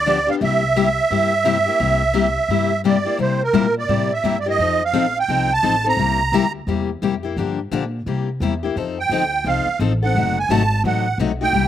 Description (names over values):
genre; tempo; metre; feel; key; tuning
acoustic string swing (jazz manouche); 172 BPM; 4/4; swing 62% on 8ths; C mixolydian; A4 = 440 Hz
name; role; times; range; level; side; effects
musette accordion; melody; 0.0-6.5, 9.0-11.7 s; Bb4 to Bb5; -18 LUFS; right 4 dB; none
upright bass; bass; 0.0-11.7 s; F#1 to C3; -24 LUFS; equal; none
picked steel-string acoustic guitar; accompaniment; 0.1-11.7 s; C3 to A4; -21 LUFS; left 8 dB; slapback echo
room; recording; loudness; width
little or no reverb; recorded outdoors, with no room sound; -17 LUFS; side -10 dB against mid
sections
0.0-3.2 A section; 3.2-11.7 A section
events
none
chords
0.4 C7; 4.6 F7; 6.0 C7; 7.4 Gm7; 8.1 C7; 8.8 F7; 10.2 F#dim7